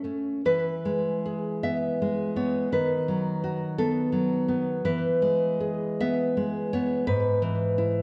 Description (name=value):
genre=romantic piece for solo classical guitar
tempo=54 BPM (dotted quarters)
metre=6/8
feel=uneven beats, rubato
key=E major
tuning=A4 = 443 Hz
part: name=nylon-string guitar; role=solo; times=0.0-8.0 s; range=G#2 to E5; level=-26 LUFS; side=equal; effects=slapback echo
room=wet concert hall reverb, RT60 2.0 s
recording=worn, warbling old tape, cassette tape, warbly pitch drift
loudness=-26 LUFS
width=mono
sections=0.4-8.0 A section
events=none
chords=0.4 E; 2.7 B/D#; 4.8 E; 7.1 E/G#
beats=| 0.45 1.64 | 2.71 3.77 | 4.84 6.00 | 7.07